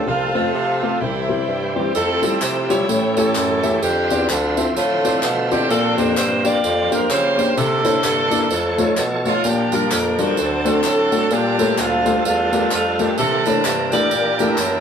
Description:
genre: uptempo gospel.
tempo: 128 BPM.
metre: 4/4.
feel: swing 59% on 8ths.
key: F major.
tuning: A4 = 443 Hz.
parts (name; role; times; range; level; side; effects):
clear saxophone section; melody; 0.0-14.8 s; G3 to D5; -20 LUFS; right 1 dB; none.
warm grand piano; accompaniment; 0.0-14.5 s; A2 to E5; -21 LUFS; left 2 dB; none.
bright tonewheel organ; sustained chords; 0.0-14.8 s; D3 to E5; -26 LUFS; right 2 dB; fast rotary speaker, chorus vibrato.
warm bassoon; bass; 0.1-14.8 s; C2 to Db3; -23 LUFS; equal; none.
tambourine and handclaps; percussion; 1.9-14.7 s; none; -27 LUFS; right 1 dB; none.
room: wet studio reverb, RT60 0.5 s.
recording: band playing live in one room.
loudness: -16 LUFS.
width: side -7 dB against mid.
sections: 0.0-1.9 A section; 1.9-14.8 B section.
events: none.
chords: 0.1 F/C; 1.0 C; 1.9 Fmaj9; 2.9 A7; 3.8 Dm9; 5.7 Bb69; 7.6 C9; 8.5 Faug7; 9.4 Bb6; 10.4 D7; 11.3 Gm9; 13.2 C13.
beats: | 0.07 0.54 1.01 1.48 | 1.95 2.42 2.89 3.35 | 3.82 4.29 4.76 5.23 | 5.70 6.17 6.64 7.10 | 7.57 8.04 8.51 8.98 | 9.45 9.91 10.38 10.85 | 11.32 11.79 12.25 12.72 | 13.19 13.65 14.12 14.59.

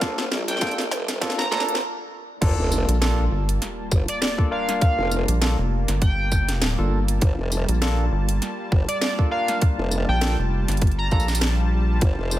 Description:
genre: glitch hop.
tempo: 100 BPM.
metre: 4/4.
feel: swing 56% on 16ths.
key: G minor.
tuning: A4 = 439 Hz.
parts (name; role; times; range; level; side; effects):
warm analog pad; sustained chords; 0.0-12.4 s; G3 to A5; -32 LUFS; equal; chorus, tremolo, sidechain pumping.
barky tine electric piano; stabs; 0.0-11.3 s; Bb3 to Bb4; -29 LUFS; equal; medium stereo tremolo, sidechain pumping, analog delay.
formant-sweep wobble bass; bass; 0.0-12.4 s; F1 to Bb1; -26 LUFS; equal; chorus, high-pass filter.
drum and bass drum kit; drums; 0.0-12.4 s; crash cymbal, hi-hat, snare drum, tambourine; -27 LUFS; equal; overdrive, studio reverb.
electronic kick drum; drums; 0.0-12.2 s; none; -20 LUFS; equal; overdrive, studio reverb.
sync lead; melody; 0.5-11.2 s; D5 to Bb5; -28 LUFS; equal; chorus, analog delay.
sub drop; sound effects; 2.4-4.8 s; none; -31 LUFS; equal; none.
rubbery square bass; bass; 2.9-12.0 s; F1 to Bb1; -21 LUFS; equal; none.
room: digital ambience.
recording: echo-heavy mix, high-pass filter.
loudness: -20 LUFS.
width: side -14 dB against mid.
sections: 0.0-2.4 A section; 2.4-12.4 B section.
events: build-up 0.0-2.4; drum fill 0.0-1.8; filter sweep on analog synth lead 0.0-2.4; filter sweep 0.0-2.4; break 1.8-2.4; drop 2.4-12.4; impact 2.4-4.8.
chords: 0.0 Gm9.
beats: | 0.02 0.62 1.22 1.82 | 2.42 3.02 3.62 4.22 | 4.82 5.42 6.02 6.62 | 7.22 7.82 8.42 9.02 | 9.62 10.22 10.82 11.42 | 12.02.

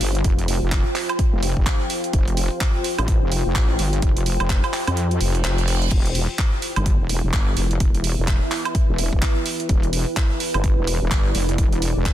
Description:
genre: bass house.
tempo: 127 BPM.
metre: 4/4.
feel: swing 60% on 16ths.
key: E phrygian.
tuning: A4 = 441 Hz.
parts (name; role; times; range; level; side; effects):
dark analog pad; sustained chords; 1.0-12.1 s; E4 to A5; -44 LUFS; left 2 dB; none.
wobble bass; bass; 0.0-12.1 s; E1 to F2; -22 LUFS; equal; chorus, tube saturation, sidechain pumping.
house drum kit; drums; 0.0-12.1 s; crash cymbal, handclaps, hi-hat, woodblock; -26 LUFS; right 3 dB; soft clipping on snare.
deep dark ambient pad; texture; 0.0-12.1 s; E4 to G5; -27 LUFS; equal; chorus, built-in reverb, sidechain pumping.
electronic kick drum; drums; 0.2-12.1 s; none; -20 LUFS; equal; none.
reverse cymbal; sound effects; 5.2-5.9 s; none; -32 LUFS; right 6 dB; none.
room: little or no reverb.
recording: dense, heavily limited modern master.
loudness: -18 LUFS.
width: side -12 dB against mid.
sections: 0.0-12.1 A section.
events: kick drops out 5.0-5.9; reverse cymbal 5.2-5.9.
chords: 0.0 F; 5.9 Em.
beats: | 0.24 0.72 1.19 1.66 | 2.13 2.61 3.08 3.55 | 4.03 4.50 4.97 5.44 | 5.91 6.39 6.86 7.33 | 7.80 8.28 8.75 9.22 | 9.69 10.17 10.64 11.11 | 11.58 12.06.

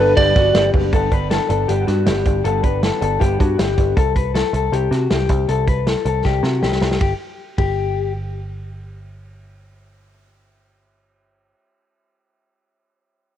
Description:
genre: jangly indie pop.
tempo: 158 BPM.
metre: 4/4.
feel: straight.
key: G major.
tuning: A4 = 442 Hz.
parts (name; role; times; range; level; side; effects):
lightly driven lead guitar; melody; 0.0-0.7 s; B4 to D5; -16 LUFS; right 3 dB; cassette tape.
fingerpicked twelve-string acoustic guitar; accompaniment; 0.0-4.0 s; G2 to D4; -27 LUFS; right 12 dB; cassette tape.
dark studio string section; sustained chords; 0.0-0.9 s; G3 to B4; -25 LUFS; left 1 dB; cassette tape.
electric guitar through a small old amp; arpeggios; 0.0-8.1 s; F#4 to B4; -21 LUFS; left 10 dB; cassette tape, analog delay.
picked electric bass; bass; 0.0-11.5 s; F#1 to C3; -21 LUFS; right 1 dB; none.
vintage drum kit; drums; 0.2-7.7 s; hi-hat, kick drum, ride cymbal, snare drum; -20 LUFS; right 1 dB; cassette tape.
room: small room ambience.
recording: home recording on cassette.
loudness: -16 LUFS.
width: side -10 dB against mid.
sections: 0.9-7.0 A section; 7.0-10.1 B section.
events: drum fill 6.2-7.0.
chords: 0.0 G; 4.0 C5; 7.0 N.C..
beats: 0.17 0.55 | 0.93 1.30 1.68 2.06 | 2.44 2.83 3.21 3.58 | 3.96 4.35 4.73 5.11 | 5.49 5.87 6.25 6.63 | 7.01 7.39 7.78 8.16 | 8.54 8.92 9.30 9.69.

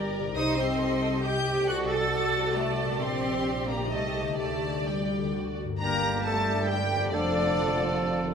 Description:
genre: classical.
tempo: 125-140 BPM.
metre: 3/4.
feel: rubato.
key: G minor.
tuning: A4 = 443 Hz.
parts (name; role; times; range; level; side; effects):
rich studio violin section; melody; 0.0-8.2 s; F#4 to Bb5; -34 LUFS; left 2 dB; none.
warm symphonic viola section; accompaniment; 0.0-8.3 s; D3 to Eb5; -35 LUFS; right 1 dB; none.
mellow French horn section; sustained chords; 0.0-8.2 s; D3 to Eb5; -35 LUFS; left 4 dB; none.
concert harp; arpeggios; 0.0-8.3 s; F2 to A4; -35 LUFS; left 5 dB; none.
rich symphonic double bass section; bass; 0.0-8.3 s; F1 to D2; -34 LUFS; right 3 dB; none.
rich chamber violin section; second line; 0.4-8.3 s; D4 to A6; -35 LUFS; right 1 dB; none.
rich symphonic cello section; bass; 0.4-8.3 s; F2 to A4; -31 LUFS; right 1 dB; none.
clear clarinet; second line; 5.8-8.2 s; D4 to Bb4; -35 LUFS; equal; none.
clear oboe; second line; 5.8-8.3 s; G4 to A4; -34 LUFS; right 2 dB; none.
concert flute; second line; 5.8-8.2 s; D5 to Bb5; -34 LUFS; left 1 dB; none.
warm bassoon; accompaniment; 5.8-8.3 s; F3 to G3; -33 LUFS; right 2 dB; none.
room: wet recital hall reverb, RT60 1.4 s.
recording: minimal, uncompressed stereo recording.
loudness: -25 LUFS.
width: side -6 dB against mid.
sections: 0.0-5.8 A section; 5.8-8.3 B section.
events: none.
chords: 0.4 Cm; 1.7 D7/C; 3.0 Gm/Bb; 3.9 Cm7; 4.4 Gm/D; 5.3 D; 5.8 Gm; 7.1 Dm/F.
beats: | 0.37 0.81 1.25 | 1.69 2.13 2.57 | 3.02 3.47 3.93 | 4.39 4.87 5.34 | 5.81 6.25 6.69 | 7.12 7.55 7.99.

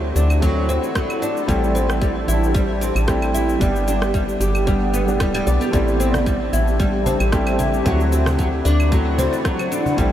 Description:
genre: organic downtempo.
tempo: 113 BPM.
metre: 4/4.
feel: swing 54% on 16ths.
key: unclear.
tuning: A4 = 440 Hz.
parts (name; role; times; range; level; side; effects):
felt-muted upright piano; accompaniment; 0.0-10.1 s; G3 to G4; -24 LUFS; equal; sidechain pumping, diffuse ambient delay.
granular cloud pad; sustained chords; 0.0-10.1 s; B3 to F#5; -26 LUFS; equal; built-in reverb, ensemble chorus, sidechain pumping.
woody FM bass; bass; 0.0-10.1 s; D1 to D2; -20 LUFS; equal; sidechain pumping.
oud; arpeggios; 0.2-10.1 s; F#3 to D5; -23 LUFS; left 1 dB; diffuse ambient delay.
electronic shaker, claves and rim click; drums; 0.2-10.1 s; none; -30 LUFS; equal; none.
electronic kick drum; drums; 0.4-10.1 s; none; -22 LUFS; equal; overdrive.
cajon; percussion; 6.1-10.0 s; none; -30 LUFS; right 1 dB; none.
room: moderate huge ambient reverb, RT60 8.6 s.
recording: dreamy mix soaked in reverb.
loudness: -16 LUFS.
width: side -11 dB against mid.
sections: 0.0-10.1 A section.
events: none.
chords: 0.0 D7; 1.5 Am7; 3.6 G; 5.7 Am7; 7.9 D7.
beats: 0.42 0.96 | 1.49 2.02 2.55 3.08 | 3.61 4.14 4.67 5.20 | 5.73 6.26 6.80 7.33 | 7.86 8.39 8.92 9.45 | 9.98.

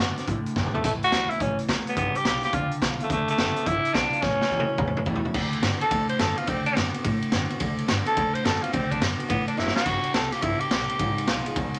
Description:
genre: rockabilly.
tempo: 213 BPM.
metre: 4/4.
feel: swing 64% on 8ths.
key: D mixolydian.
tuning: A4 = 440 Hz.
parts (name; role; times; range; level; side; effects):
breathy tenor saxophone; melody; 0.0-11.4 s; A3 to C5; -28 LUFS; equal; none.
picked steel-string acoustic guitar; accompaniment; 0.0-11.8 s; E2 to G#4; -37 LUFS; equal; none.
electric guitar through a small old amp; riff; 0.0-11.8 s; G2 to B3; -35 LUFS; equal; none.
upright bass; bass; 0.0-11.8 s; F#1 to A2; -35 LUFS; equal; none.
raw garage drum kit; drums; 0.2-11.8 s; crash cymbal, hi-hat, kick drum, ride cymbal, snare drum, splash cymbal, toms; -29 LUFS; equal; none.
room: moderate studio ambience, RT60 0.5 s.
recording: none.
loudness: -25 LUFS.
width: mono.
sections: 0.0-5.3 A section; 5.3-11.8 B section.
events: drum fill 0.6, 4.2-5.3, 9.6; tenor saxophone solo 5.3-11.8.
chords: 0.0 D7; 0.8 A7; 2.0 G7; 3.1 D7; 3.7 G7; 4.2 A7; 5.3 D7; 9.9 G7; 11.0 G#dim7.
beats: 0.27 0.56 | 0.84 1.12 1.40 1.68 | 1.97 2.25 2.53 2.81 | 3.09 3.38 3.66 3.94 | 4.22 4.50 4.79 5.07 | 5.35 5.63 5.91 6.20 | 6.48 6.76 7.04 7.33 | 7.61 7.89 8.17 8.45 | 8.74 9.02 9.30 9.58 | 9.87 10.15 10.43 10.71 | 11.00 11.28 11.56.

